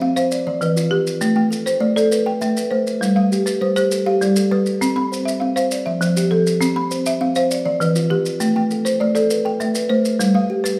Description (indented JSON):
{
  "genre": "southern african traditional, mbira-style interlocking cycle",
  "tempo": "134 BPM (dotted quarters)",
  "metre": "12/8",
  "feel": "straight",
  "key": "unclear",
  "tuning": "A4 = 440 Hz",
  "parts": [
    { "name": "folk marimba with hard mallets", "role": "arpeggios", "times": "0.0-10.8 s", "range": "E3 to B5", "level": "-21 LUFS", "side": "equal", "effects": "none" },
    { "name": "kalimba", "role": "arpeggios", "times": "0.0-10.8 s", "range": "E3 to E5", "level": "-23 LUFS", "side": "equal", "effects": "none" },
    { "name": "maracas", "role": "percussion", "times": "0.2-10.8 s", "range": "none", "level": "-33 LUFS", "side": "equal", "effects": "none" }
  ],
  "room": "moderate recital hall reverb, RT60 1.5 s",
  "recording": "none",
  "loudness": "-19 LUFS",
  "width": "mono",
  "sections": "0.0-10.8 A section",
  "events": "none",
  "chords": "0.3 Em; 1.2 Am; 3.0 G; 4.8 C; 5.7 F; 6.6 C; 7.5 Em; 8.4 Am; 10.2 G"
}